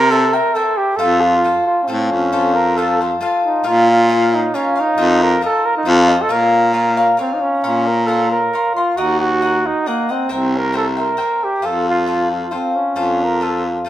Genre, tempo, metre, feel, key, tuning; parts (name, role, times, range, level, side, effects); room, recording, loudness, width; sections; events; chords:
mexican folk, mariachi; 135 BPM; 3/4; straight; Bb harmonic minor; A4 = 440 Hz
dark trumpet; melody; 0.0-13.7 s; Bb3 to Bb4; -17 LUFS; right 2 dB
cavaquinho; accompaniment; 0.0-13.9 s; F4 to C6; -18 LUFS; left 2 dB
bright baritone saxophone; bass; 0.0-13.8 s; C2 to C3; -18 LUFS; left 1 dB
moderate recital hall reverb, RT60 1.3 s; minimal, uncompressed stereo recording; -14 LUFS; side -13 dB against mid
0.0-7.6 A section; 7.6-13.9 A section
0.0 C7; 1.0 F; 3.7 Bbm; 5.0 F7sus4; 5.9 F7; 6.3 Bbm; 7.6 Bbmadd9; 9.0 Ebm; 10.3 C7; 11.6 F